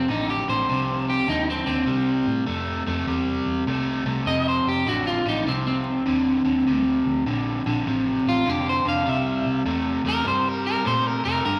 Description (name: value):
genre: electric blues shuffle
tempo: 100 BPM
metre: 4/4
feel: swing 65% on 8ths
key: unclear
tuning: A4 = 440 Hz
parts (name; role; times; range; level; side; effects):
- electric guitar at the edge of break-up; melody; 0.0-11.6 s; C4 to F5; -26 LUFS; equal; spring reverb
- overdriven electric guitar; riff; 0.0-11.6 s; F2 to A3; -26 LUFS; equal; none
- vintage muted fingered electric bass; bass; 0.0-11.6 s; F1 to Bb2; -33 LUFS; equal; none
room: wet large studio reverb, RT60 1.2 s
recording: vinyl crackle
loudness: -23 LUFS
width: mono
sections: 0.0-11.6 A section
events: clean electric guitar solo 0.0-11.6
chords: 0.0 F7; 1.9 C; 4.3 F; 9.1 C7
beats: 0.09 0.68 1.28 | 1.88 2.48 3.07 3.67 | 4.27 4.87 5.47 6.07 | 6.66 7.26 7.86 8.46 | 9.06 9.66 10.26 10.86 | 11.45